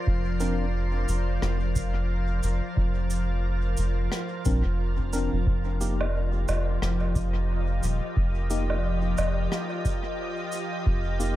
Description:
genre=ambient dub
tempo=89 BPM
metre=4/4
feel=swing 58% on 16ths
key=unclear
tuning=A4 = 440 Hz
part: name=soft additive organ-like pad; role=sustained chords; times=0.0-11.4 s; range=F3 to Eb5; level=-32 LUFS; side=left 1 dB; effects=ensemble chorus, built-in reverb
part: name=drifting glass-harmonics texture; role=texture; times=0.0-5.5 s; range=F4 to F5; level=-40 LUFS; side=right 1 dB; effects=chorus, built-in reverb
part: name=soft dub sub bass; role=bass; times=0.1-11.4 s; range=Eb1 to Bb1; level=-26 LUFS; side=equal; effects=none
part: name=electronic kick drum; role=drums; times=0.1-11.0 s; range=none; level=-28 LUFS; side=equal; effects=none
part: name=bright tine electric piano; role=stabs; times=0.4-11.4 s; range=Bb3 to Bb4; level=-35 LUFS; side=left 2 dB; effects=medium stereo tremolo, dub echo
part: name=cabasa, rim click and woodblock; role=drums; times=0.4-11.4 s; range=none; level=-34 LUFS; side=right 1 dB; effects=dub echo
room=small room ambience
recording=echo-heavy mix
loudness=-24 LUFS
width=side -14 dB against mid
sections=0.0-5.5 A section; 5.5-11.4 A section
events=none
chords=0.0 Bbadd9/F; 5.5 F9sus4

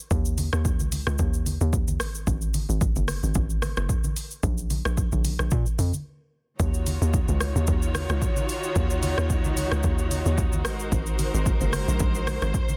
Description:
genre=amapiano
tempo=111 BPM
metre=4/4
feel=swing 55% on 16ths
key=Eb dorian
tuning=A4 = 444 Hz
part: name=hollow log drum bass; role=bass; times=0.1-12.5 s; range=Gb1 to Bb2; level=-28 LUFS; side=equal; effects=none
part: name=deep house drum kit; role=drums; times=0.1-12.8 s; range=hi-hat, kick drum, rim click, shaker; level=-28 LUFS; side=equal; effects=none
part: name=congas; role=percussion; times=0.1-12.8 s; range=none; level=-36 LUFS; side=equal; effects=none
part: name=warm studio string section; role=sustained chords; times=6.6-12.8 s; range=Eb3 to Db5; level=-33 LUFS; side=equal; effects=sidechain pumping
room=digital ambience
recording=dense, heavily limited modern master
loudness=-25 LUFS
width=mono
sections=0.0-12.8 A section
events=break 6.1-6.6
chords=0.0 Dbsus2; 2.0 Gbsus2; 4.4 Bb5; 6.6 Ebm9; 10.7 Ab9

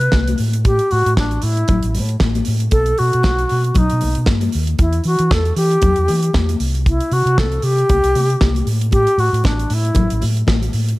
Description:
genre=disco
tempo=116 BPM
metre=4/4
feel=swing 56% on 16ths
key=unclear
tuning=A4 = 439 Hz
part: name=bright alto flute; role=melody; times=0.0-10.2 s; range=D4 to B4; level=-18 LUFS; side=equal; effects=none
part: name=fingered electric bass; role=bass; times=0.0-10.9 s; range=A1 to E3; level=-18 LUFS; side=equal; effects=none
part: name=damped 70s drum kit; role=drums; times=0.0-11.0 s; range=hi-hat, kick drum, snare drum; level=-19 LUFS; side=equal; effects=none
part: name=congas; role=percussion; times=0.1-10.7 s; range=none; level=-25 LUFS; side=left 4 dB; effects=none
room=small room ambience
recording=none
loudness=-14 LUFS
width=side -19 dB against mid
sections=0.0-11.0 A section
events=none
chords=0.4 A5; 2.7 B; 4.8 Em; 6.6 C5; 8.7 A5

